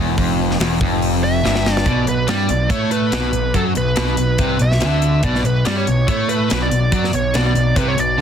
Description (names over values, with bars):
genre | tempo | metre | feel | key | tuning
hard rock | 142 BPM | 4/4 | straight | B minor | A4 = 440 Hz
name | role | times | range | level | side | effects
crunchy overdriven guitar | riff | 0.0-8.2 s | E2 to A3 | -21 LUFS | left 10 dB | none
overdriven semi-hollow guitar | riff | 0.0-8.2 s | E2 to A3 | -22 LUFS | right 10 dB | none
fuzz picked electric bass | bass | 0.0-8.2 s | E1 to A2 | -22 LUFS | equal | overdrive
tight metal drum kit | drums | 0.2-8.1 s | hi-hat, kick drum, snare drum | -22 LUFS | equal | none
bluesy overdriven lead guitar | melody | 1.2-8.2 s | A4 to E5 | -21 LUFS | right 2 dB | distortion
room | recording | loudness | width
light reverb | dense, heavily limited modern master | -15 LUFS | side -8 dB against mid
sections
0.0-1.9 A section; 1.9-8.2 B section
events
drum fill 1.4-1.9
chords
0.0 Em; 1.9 Bm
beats
| 0.19 0.61 1.03 1.45 | 1.87 2.29 2.71 3.13 | 3.55 3.97 4.39 4.82 | 5.24 5.66 6.08 6.50 | 6.92 7.34 7.76 8.19